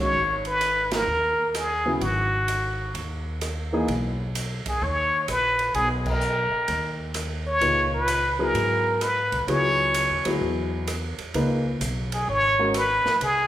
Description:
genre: modal jazz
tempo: 129 BPM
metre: 4/4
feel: swing 66% on 8ths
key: G# minor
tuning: A4 = 439 Hz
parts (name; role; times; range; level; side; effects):
- trumpet with plunger mute; melody; 0.0-13.5 s; F#4 to C#5; -22 LUFS; equal; none
- dark concert grand piano; accompaniment; 0.0-3.9, 7.6-12.7 s; A#2 to B4; -28 LUFS; left 1 dB; none
- upright bass; bass; 0.1-13.5 s; G#1 to G#2; -30 LUFS; equal; none
- open jazz drum kit; drums; 0.4-13.4 s; crash cymbal, hi-hat, kick drum, ride cymbal, rim click, snare drum; -32 LUFS; right 2 dB; none
room: wet recital hall reverb, RT60 1.5 s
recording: recorded in a church or concert hall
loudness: -22 LUFS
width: side -12 dB against mid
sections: 0.1-13.5 A section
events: band accent 0.8, 6.0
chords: 0.1 G#madd9; 7.6 C#m9

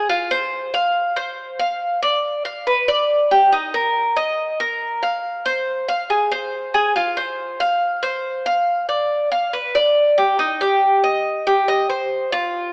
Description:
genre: latin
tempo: 140 BPM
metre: 4/4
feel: straight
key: unclear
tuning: A4 = 440 Hz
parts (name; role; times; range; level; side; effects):
- Cuban tres; solo; 0.0-12.7 s; Eb4 to F5; -20 LUFS; equal; none
room: moderate lush hall reverb, RT60 2.5 s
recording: rough home demo mix, AM radio sound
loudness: -20 LUFS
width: mono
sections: 0.0-10.4 A section; 10.4-12.7 B section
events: none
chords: none

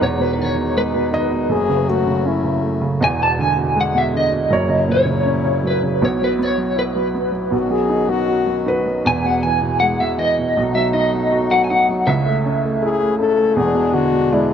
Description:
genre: acoustic folk-pop ballad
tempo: 80 BPM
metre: 4/4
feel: straight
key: E major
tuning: A4 = 440 Hz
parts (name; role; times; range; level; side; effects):
- electric guitar through a small old amp; melody; 0.0-14.3 s; B4 to A5; -19 LUFS; equal; tremolo
- warm upright piano; accompaniment; 0.0-14.5 s; E1 to F#4; -19 LUFS; right 2 dB; none
- pedal harmonium; sustained chords; 0.0-14.5 s; A#2 to A4; -27 LUFS; left 3 dB; none
- felt-muted upright piano; arpeggios; 1.1-9.4, 14.3-14.5 s; B4 to D#5; -25 LUFS; right 1 dB; none
- clear French horn; second line; 1.5-2.8, 7.5-14.5 s; E4 to A4; -19 LUFS; left 6 dB; none
room: light reverb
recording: none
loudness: -15 LUFS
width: side -8 dB against mid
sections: 0.0-14.5 A section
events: none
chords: 0.0 Emaj7; 1.5 F#m; 3.0 E7; 4.5 F#7; 6.0 Bsus4; 7.5 Badd9; 9.1 E; 10.6 B7; 12.1 A/C#; 13.6 E7

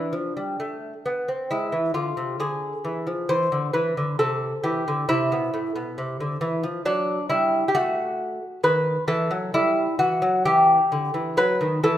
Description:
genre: classical, baroque-style dance for lute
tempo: 67 BPM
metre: 3/4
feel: rubato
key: A minor, E minor from 6.9 s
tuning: A4 = 439 Hz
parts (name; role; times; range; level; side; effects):
- lute; solo; 0.0-12.0 s; A2 to C5; -21 LUFS; equal; none
room: moderate recital hall reverb, RT60 1.6 s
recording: minimal, uncompressed stereo recording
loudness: -21 LUFS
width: side -12 dB against mid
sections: 0.0-12.0 A section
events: none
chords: 0.0 Bm7b5; 1.5 E7; 4.2 Am; 6.9 F#m7; 8.6 B7/D#; 9.5 Em; 11.4 D#dim

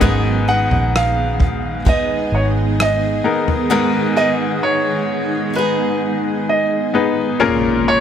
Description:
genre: pop ballad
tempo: 65 BPM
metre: 4/4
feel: straight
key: unclear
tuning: A4 = 440 Hz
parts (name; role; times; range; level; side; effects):
- bright upright piano; accompaniment; 0.0-8.0 s; Ab2 to Cb5; -20 LUFS; left 5 dB; none
- granular cloud pad; sustained chords; 0.0-8.0 s; Db3 to Ab4; -22 LUFS; right 1 dB; built-in reverb
- picked steel-string acoustic guitar; arpeggios; 0.0-7.9 s; Ab2 to Ab4; -25 LUFS; right 3 dB; none
- vintage muted fingered electric bass; bass; 0.0-3.2 s; Ab1 to Bb1; -20 LUFS; equal; none
- loose indie drum kit; drums; 0.0-3.7 s; kick drum, rim click, toms; -18 LUFS; equal; none
- clear grand piano; melody; 0.5-8.0 s; Cb5 to Gb5; -20 LUFS; right 2 dB; none
- impact; sound effects; 7.4-8.0 s; none; -24 LUFS; right 1 dB; none
room: small room ambience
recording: none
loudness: -15 LUFS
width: side -8 dB against mid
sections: 0.0-7.4 A section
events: impact 7.4-8.0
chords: 0.0 Abm; 7.4 Bbm7

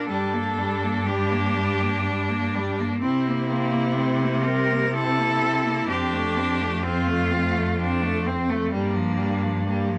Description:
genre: classical, lyrical piece for cello ensemble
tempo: 63 BPM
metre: 3/4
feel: rubato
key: unclear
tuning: A4 = 440 Hz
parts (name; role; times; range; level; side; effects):
- warm cello; melody; 0.0-10.0 s; D4 to Bb4; -30 LUFS; equal; none
- rich cello; second line; 0.0-10.0 s; G3 to E4; -30 LUFS; equal; none
- rich cello; accompaniment; 0.0-10.0 s; F3 to C4; -30 LUFS; equal; none
- warm cello; bass; 0.0-10.0 s; F2 to C3; -28 LUFS; equal; none
room: moderate studio reverb, RT60 0.6 s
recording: none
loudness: -24 LUFS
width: mono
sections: 0.0-10.0 A section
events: none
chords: 0.1 Gm; 3.0 C7; 5.9 F; 8.7 Gm7

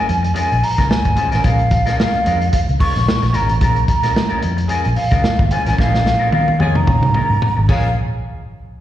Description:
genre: funk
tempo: 110 BPM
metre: 4/4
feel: swing 56% on 16ths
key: Bb minor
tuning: A4 = 440 Hz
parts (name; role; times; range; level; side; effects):
- breathy concert flute; melody; 0.0-7.9 s; F5 to Db6; -20 LUFS; right 1 dB; slapback echo, analog delay
- electric guitar through a small old amp; accompaniment; 0.0-7.9 s; Ab3 to C5; -25 LUFS; left 4 dB; slapback echo
- vintage muted fingered electric bass; bass; 0.1-7.9 s; Ab1 to Bb2; -18 LUFS; equal; none
- crunchy breakbeat drum kit; drums; 0.1-7.8 s; crash cymbal, hi-hat, kick drum, snare drum, toms; -18 LUFS; equal; slapback echo
- warm horn section; second line; 6.6-7.9 s; F3 to Ab4; -30 LUFS; left 1 dB; slapback echo, analog delay
room: light reverb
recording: live gig heard through the venue's PA, cassette tape, recital hall reverb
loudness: -13 LUFS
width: side -12 dB against mid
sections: 0.0-8.0 A section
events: drum fill 5.8-8.0; band accent 5.8-8.0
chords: 0.0 Bbm7; 8.0 N.C.

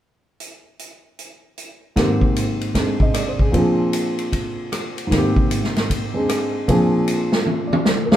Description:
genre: jazz, big band swing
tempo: 153 BPM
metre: 4/4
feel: swing 64% on 8ths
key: unclear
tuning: A4 = 440 Hz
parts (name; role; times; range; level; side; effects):
- swinging big-band drum kit; drums; 0.4-8.2 s; hi-hat, kick drum, ride cymbal, rim click, snare drum, toms; -21 LUFS; equal; none
- warm concert grand piano; accompaniment; 2.0-8.2 s; Ab2 to Eb5; -19 LUFS; equal; none
- warm saxophone section; melody; 8.1-8.2 s; Ab4; -12 LUFS; equal; none
room: wet club reverb, RT60 0.5 s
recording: heard from further back in the room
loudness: -17 LUFS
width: side -12 dB against mid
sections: 0.4-2.0 A section; 2.0-8.2 B section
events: drum fill 7.5-8.2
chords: 0.4 N.C.; 2.0 Abmaj7; 3.5 Bb7; 5.1 Abmaj7; 6.7 Bb7

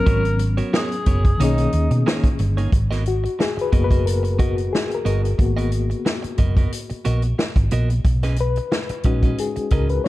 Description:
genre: lush 1970s-style soul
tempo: 90 BPM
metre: 4/4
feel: swing 54% on 16ths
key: unclear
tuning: A4 = 440 Hz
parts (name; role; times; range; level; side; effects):
- breathy tenor saxophone; melody; 0.0-2.1 s; D#4 to A#4; -26 LUFS; equal; none
- reed electric piano; accompaniment; 0.0-10.1 s; D#3 to C#5; -25 LUFS; left 4 dB; overdrive, fast tremolo
- clean electric guitar; riff; 0.1-9.9 s; A#3 to D#5; -30 LUFS; right 4 dB; none
- hollow-body short-scale fingered electric bass; bass; 0.1-10.0 s; F#1 to B2; -20 LUFS; equal; none
- vintage drum kit; drums; 0.1-10.1 s; hi-hat, kick drum, snare drum; -21 LUFS; equal; none
room: small room ambience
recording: dark, warm production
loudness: -18 LUFS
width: side -17 dB against mid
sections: 0.0-2.7 A section; 2.7-10.1 B section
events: reed electric piano solo 2.7-10.1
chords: 0.0 G#m11; 1.4 Bmaj13; 2.7 G#m9; 8.1 B69

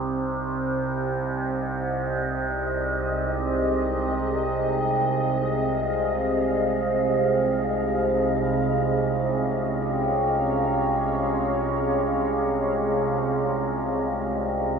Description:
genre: dark ambient drone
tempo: free time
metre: none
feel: none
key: unclear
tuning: A4 = 442 Hz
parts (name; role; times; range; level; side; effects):
- deep dark ambient pad; sustained chords; 0.0-14.8 s; C3 to F5; -26 LUFS; right 1 dB; chorus, built-in reverb
- overtone-sweeping drone; drone; 0.0-14.8 s; C2 to C3; -25 LUFS; right 1 dB; chorus, built-in reverb
- wind-like tuned noise texture; texture; 1.3-14.8 s; Eb5; -32 LUFS; left 2 dB; built-in reverb
room: wet cathedral reverb, RT60 6.7 s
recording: cassette tape, small room ambience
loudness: -22 LUFS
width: side -6 dB against mid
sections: 0.0-14.8 A section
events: none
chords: 0.4 Dbadd9/C

